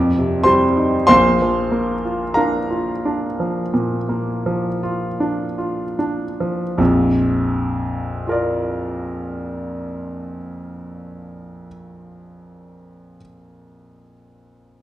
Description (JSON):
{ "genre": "classical, romantic nocturne for solo piano", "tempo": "36-54 BPM", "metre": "4/4", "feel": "rubato", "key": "Bb major", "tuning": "A4 = 440 Hz", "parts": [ { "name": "clear concert grand piano", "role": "solo", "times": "0.0-14.8 s", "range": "Bb1 to D6", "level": "-17 LUFS", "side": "equal", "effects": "none" } ], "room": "wet recital hall reverb, RT60 1.4 s", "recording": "dark, warm production", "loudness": "-17 LUFS", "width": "side -14 dB against mid", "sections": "0.0-6.8 A section; 6.8-12.7 B section", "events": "slowing down 0.0-6.8", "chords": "0.0 Fsus2; 1.1 Bb" }